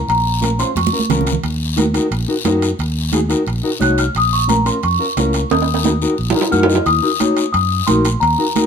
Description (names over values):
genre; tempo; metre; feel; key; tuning
latin, cumbia; 177 BPM; 4/4; straight; Eb dorian; A4 = 440 Hz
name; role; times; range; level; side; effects
celesta; melody; 0.0-1.2, 3.8-8.7 s; Bb5 to Gb6; -18 LUFS; left 2 dB; none
fingered electric bass; bass; 0.1-8.3 s; Bb1 to Gb2; -20 LUFS; equal; none
congas; percussion; 0.1-8.7 s; none; -21 LUFS; right 4 dB; none
guiro; percussion; 0.1-8.7 s; none; -26 LUFS; left 6 dB; none
timbales; percussion; 0.1-8.7 s; none; -22 LUFS; right 6 dB; none
mellow electric guitar; accompaniment; 0.4-8.7 s; Db4 to Bb5; -19 LUFS; left 2 dB; none
room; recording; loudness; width
moderate studio reverb, RT60 0.8 s; minimal, uncompressed stereo recording; -14 LUFS; side -7 dB against mid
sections
0.0-6.9 A section; 6.9-8.7 B section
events
drum fill 0.8-1.4, 5.5-6.9; clean electric guitar fill 6.2-6.9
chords
0.0 Bbm; 1.4 Ebm; 4.1 Bbm; 5.5 Ebm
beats
| 0.08 0.42 0.76 1.09 | 1.43 1.77 2.11 2.45 | 2.79 3.13 3.47 3.81 | 4.14 4.48 4.82 5.16 | 5.50 5.84 6.18 6.52 | 6.86 7.20 7.53 7.87 | 8.21 8.55